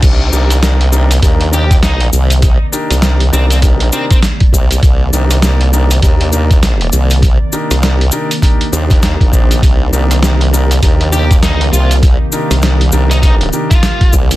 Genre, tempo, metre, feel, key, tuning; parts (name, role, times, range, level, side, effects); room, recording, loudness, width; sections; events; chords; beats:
glitch hop; 100 BPM; 4/4; swing 60% on 16ths; C minor; A4 = 440 Hz
warbly tape-like pad; sustained chords; 0.3-14.4 s; C3 to D5; -22 LUFS; right 1 dB; chorus, built-in reverb, sidechain pumping
clear concert grand piano; stabs; 0.0-13.8 s; D4 to C5; -21 LUFS; left 1 dB; sidechain pumping, dub echo
formant-sweep wobble bass; bass; 0.0-14.4 s; Bb1 to Eb2; -11 LUFS; equal; chorus
boom bap sampler-style drum kit; drums; 0.0-14.4 s; crash cymbal, hi-hat, rim click, snare drum; -17 LUFS; equal
electronic kick drum; drums; 0.0-14.3 s; -10 LUFS; equal
cabasa; percussion; 0.0-14.4 s; -21 LUFS; left 3 dB
biting lead guitar; melody; 1.5-4.2, 11.1-14.1 s; C4 to G4; -21 LUFS; equal; overdrive, dub echo
little or no reverb; dense, heavily limited modern master; -8 LUFS; side -17 dB against mid
0.0-14.4 A section
0.0 Cm9
| 0.03 0.63 1.23 1.83 | 2.43 3.03 3.63 4.23 | 4.83 5.43 6.03 6.63 | 7.23 7.83 8.43 9.03 | 9.63 10.23 10.83 11.43 | 12.03 12.63 13.23 13.83